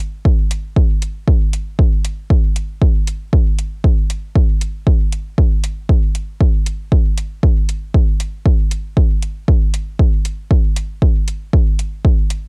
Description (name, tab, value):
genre	techno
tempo	117 BPM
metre	4/4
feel	straight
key	none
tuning	none
part	electronic hi-hat	drums	0.0-12.4 s	none	-30 LUFS	equal	overdrive, cassette tape
part	electronic kick drum	drums	0.3-12.2 s	none	-16 LUFS	equal	overdrive, cassette tape
room	little or no reverb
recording	home recording on cassette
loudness	-16 LUFS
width	mono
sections	0.0-12.5 A section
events	none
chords	none